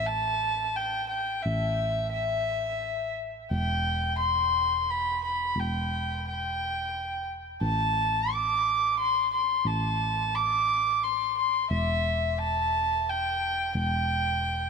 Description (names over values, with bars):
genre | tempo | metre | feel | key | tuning
post-rock | 88 BPM | 3/4 | straight | A minor | A4 = 439 Hz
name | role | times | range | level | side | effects
dark violin | melody | 0.0-14.7 s | E5 to D6 | -26 LUFS | equal | analog delay
hollow-body short-scale picked electric bass | bass | 0.0-14.7 s | E1 to A1 | -32 LUFS | equal | none
room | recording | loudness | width
light reverb, small room ambience | none | -25 LUFS | side -5 dB against mid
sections
0.0-14.7 A section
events
none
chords
0.0 A5; 3.5 Em; 7.6 Amadd11; 11.7 Em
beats
0.08 0.77 | 1.45 2.14 2.82 | 3.51 4.19 4.88 | 5.56 6.24 6.93 | 7.61 8.30 8.98 | 9.66 10.35 11.03 | 11.71 12.39 13.08 | 13.76 14.44